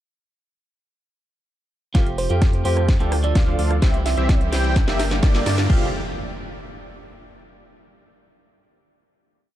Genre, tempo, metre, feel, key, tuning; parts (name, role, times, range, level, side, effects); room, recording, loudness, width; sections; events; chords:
EDM, festival progressive house; 128 BPM; 4/4; straight; F major; A4 = 440 Hz
clean electric guitar; accompaniment; 1.9-5.9 s; D3 to C5; -31 LUFS; right 4 dB; sidechain pumping, digital delay
lush unison pad; sustained chords; 1.9-5.9 s; D3 to G4; -34 LUFS; right 1 dB
wide unison lead; arpeggios; 1.9-5.9 s; D5 to G5; -32 LUFS; equal; analog chorus, cassette tape, sidechain pumping, digital delay
supersaw chords; riff; 1.9-5.9 s; Bb3 to G5; -28 LUFS; equal; sidechain pumping, low-pass filter, digital delay
saturated sub bass; bass; 1.9-5.9 s; F1 to G2; -22 LUFS; equal; tube saturation, sidechain pumping
electronic kick drum; drums; 1.9-5.8 s; -18 LUFS; equal
house drum kit; drums; 1.9-5.8 s; crash cymbal, hi-hat, rim click, snare drum; -30 LUFS; equal; high-pass filter on snare, high-pass filter on hats, high-pass filter on cymbals, high-pass filter on room
riser and impact; sound effects; 3.9-7.6 s; -34 LUFS; equal
bell-like FM electric piano; melody; 2.2-4.4 s; C5 to E5; -30 LUFS; right 4 dB; chorus, tremolo, digital delay
little or no reverb; dark, warm production; -17 LUFS; side -13 dB against mid
1.9-5.7 build; 5.7-7.6 final chord
build-up 1.9-5.7; drum fill 1.9-5.7; filter sweep on supersaw synth 1.9-5.7; filter sweep on analog synth lead 1.9-5.7
1.9 Fadd9; 2.9 Dm; 3.8 C; 4.8 Gm; 5.7 Fadd9